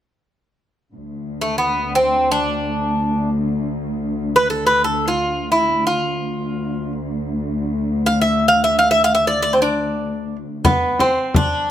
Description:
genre	Turkish makam ensemble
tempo	free time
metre	none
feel	none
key	D makam nikriz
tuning	A4 = 440 Hz
part	muted symphonic cello section	drone	0.9-10.7 s	D2	-23 LUFS	left 1 dB	none
part	Greek bouzouki	melody	1.4-11.7 s	A3 to F5	-16 LUFS	equal	none
part	frame drum	percussion	10.6-11.5 s	none	-18 LUFS	left 2 dB	none
room	light reverb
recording	close, detailed microphones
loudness	-16 LUFS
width	side -11 dB against mid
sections	0.9-10.6 A section; 10.6-11.7 B section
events	none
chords	none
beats	free time

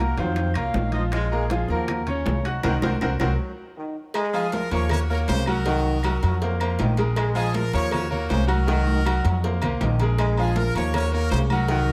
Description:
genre	latin, salsa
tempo	159 BPM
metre	4/4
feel	straight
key	Bb minor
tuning	A4 = 440 Hz
part	dark horn section	melody	0.0-3.3 s	F3 to F5	-32 LUFS	equal	none
part	bright grand piano	accompaniment	0.0-11.9 s	Eb3 to Gb6	-30 LUFS	equal	none
part	upright bass	bass	0.0-11.9 s	Bb1 to F2	-26 LUFS	equal	none
part	bright trombone section	second line	0.2-11.9 s	Db3 to Ab3	-33 LUFS	equal	none
part	bongos and cowbell	percussion	0.2-11.9 s	none	-37 LUFS	equal	none
part	congas	percussion	0.2-11.9 s	none	-33 LUFS	equal	none
part	timbales and agogo bells	percussion	0.2-11.7 s	none	-35 LUFS	equal	none
part	claves	percussion	0.5-11.7 s	none	-42 LUFS	equal	none
part	brilliant horn section	melody	4.3-11.9 s	Eb4 to Db5	-32 LUFS	equal	none
room	light reverb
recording	none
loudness	-23 LUFS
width	mono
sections	0.0-4.1 A section; 4.1-11.9 B section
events	band accent 2.6-4.1; drum fill 3.2-4.1, 8.7-10.2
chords	0.4 F7sus4; 1.1 Bbm7; 1.9 Ebm7; 2.6 Cm7b5; 3.4 N.C.; 4.1 Bbm7; 4.9 Ebm7; 5.7 Cm7b5; 6.4 F7sus4; 7.2 Bbm7; 7.9 Ebm7; 8.7 Cm7b5; 9.4 F7sus4; 10.2 Bbm7; 10.9 Ebm7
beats	0.36 0.74 | 1.12 1.50 1.88 2.26 | 2.64 3.02 3.39 3.77 | 4.15 4.53 4.90 5.28 | 5.66 6.04 6.41 6.79 | 7.17 7.54 7.92 8.30 | 8.68 9.05 9.43 9.81 | 10.18 10.56 10.94 11.32 | 11.69

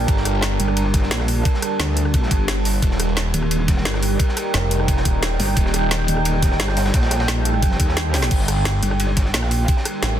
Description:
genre	dark technical drum and bass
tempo	175 BPM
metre	4/4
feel	straight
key	G minor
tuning	A4 = 441 Hz
part	deep dark ambient pad	sustained chords	0.0-10.2 s	G3 to A5	-24 LUFS	right 2 dB	chorus, built-in reverb, sidechain pumping
part	metallic wobble bass	bass	0.0-9.7 s	Eb1 to Eb2	-20 LUFS	equal	chorus
part	phased detuned saw bass	bass	0.1-6.1, 8.3-10.2 s	Eb1 to A1	-21 LUFS	equal	phaser, tube saturation, sidechain pumping
part	crunchy breakbeat drum kit	drums	0.1-10.1 s	ride cymbal, snare drum	-30 LUFS	equal	high-pass filter on cymbals, small room ambience, high-pass filter on snare, high-pass filter on room
part	drum and bass drum kit	drums	0.1-10.1 s	crash cymbal, hi-hat, rim click, snare drum	-24 LUFS	equal	overdrive, small room ambience
part	electronic kick drum	drums	0.1-9.8 s	none	-19 LUFS	equal	overdrive, small room ambience
room	digital ambience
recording	dense, heavily limited modern master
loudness	-17 LUFS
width	side -10 dB against mid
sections	0.0-10.2 A section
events	drum fill 8.1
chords	0.0 Gm; 2.8 Eb; 8.3 Gm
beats	| 0.08 0.42 0.77 1.11 | 1.45 1.80 2.14 2.48 | 2.83 3.17 3.51 3.85 | 4.20 4.54 4.88 5.22 | 5.57 5.91 6.25 6.60 | 6.94 7.28 7.62 7.97 | 8.31 8.65 9.00 9.34 | 9.68 10.03

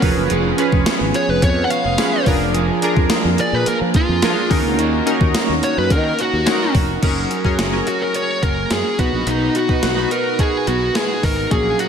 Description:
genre	1980s-style pop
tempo	107 BPM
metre	4/4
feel	straight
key	F# major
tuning	A4 = 440 Hz
part	chorused retro synth keys	accompaniment	0.0-11.9 s	A#2 to B4	-21 LUFS	left 1 dB	slapback echo
part	electric guitar at the edge of break-up	riff	0.0-11.9 s	E#3 to G#4	-24 LUFS	right 6 dB	wide subtle chorus, digital delay, slapback echo
part	sustaining fretless electric bass	bass	0.0-11.7 s	E#1 to E#3	-22 LUFS	equal	lush chorus
part	gated 80s digital drum machine	drums	0.0-11.9 s	crash cymbal, hi-hat, kick drum, snare drum, tambourine	-20 LUFS	equal	gated reverb, gated reverb snare
part	fuzz lead guitar	melody	1.2-11.9 s	D#4 to F#5	-21 LUFS	equal	distortion, digital delay, slapback echo
room	moderate lush hall reverb, RT60 2.9 s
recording	big arena sound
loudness	-15 LUFS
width	side -7 dB against mid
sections	0.0-7.0 A section; 7.0-11.9 B section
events	lead electric guitar solo 7.0-11.9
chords	0.0 C#7/E#; 2.3 A#7/E#; 4.5 D#m7; 7.0 F#add9; 9.0 B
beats	| 0.30 0.86 1.42 1.98 | 2.54 3.11 3.67 4.23 | 4.79 5.35 5.91 6.47 | 7.03 7.59 8.15 8.71 | 9.27 9.84 10.39 10.96 | 11.52

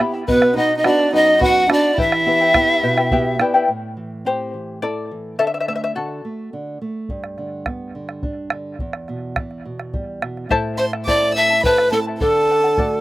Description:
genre	andean folk, Andean ensemble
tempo	70 BPM (dotted quarters)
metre	6/8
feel	straight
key	unclear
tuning	A4 = 440 Hz
part	charango	accompaniment	0.0-6.8, 10.5-13.0 s	E4 to B5	-22 LUFS	left 3 dB	slapback echo
part	nylon-string guitar	accompaniment	0.0-13.0 s	E2 to E5	-26 LUFS	right 2 dB	none
part	bombo	percussion	0.0-3.6, 7.1-12.9 s	none	-22 LUFS	right 1 dB	none
part	breathy bright pan flute	melody	0.3-3.4, 10.8-13.0 s	A4 to F#5	-15 LUFS	equal	none
part	warm violin	second line	0.3-3.4, 10.8-13.0 s	B3 to E6	-21 LUFS	right 2 dB	none
room	light reverb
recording	recorded outdoors, with no room sound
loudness	-16 LUFS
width	side -16 dB against mid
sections	0.0-3.7 A section; 3.7-10.5 B section; 10.5-13.0 C section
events	nylon-string guitar fill 2.8-3.7; charango solo 3.7-10.5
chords	0.3 B; 2.0 Em; 3.7 Am; 5.4 D; 7.1 G; 8.8 Em; 10.5 Am; 12.2 D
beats	| 0.28 1.13 | 1.98 2.83 | 3.68 4.53 | 5.38 6.24 | 7.09 7.94 | 8.80 9.65 | 10.50 11.35 | 12.21

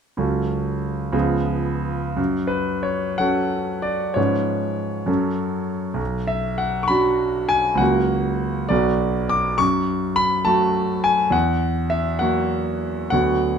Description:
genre	classical, romantic character piece for solo piano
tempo	54-70 BPM (dotted quarters)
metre	6/8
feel	rubato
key	F# minor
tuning	A4 = 442 Hz
part	clear concert grand piano	solo	0.2-13.6 s	B1 to D6	-19 LUFS	equal	none
room	moderate large studio reverb, RT60 1.1 s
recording	minimal, uncompressed stereo recording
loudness	-19 LUFS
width	side -7 dB against mid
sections	0.2-2.2 A section; 2.2-13.6 B section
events	none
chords	0.2 F#m/C#; 1.1 C#7; 2.2 F#m; 4.2 C#7/G#; 5.1 F#m; 6.0 Bm; 7.8 F#/C#; 8.7 Bm; 9.6 F#m; 11.3 F#7/E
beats	| 0.19 1.14 | 2.18 3.21 | 4.17 5.08 | 6.00 6.91 | 7.80 8.70 | 9.61 10.47 | 11.34 12.21 | 13.12

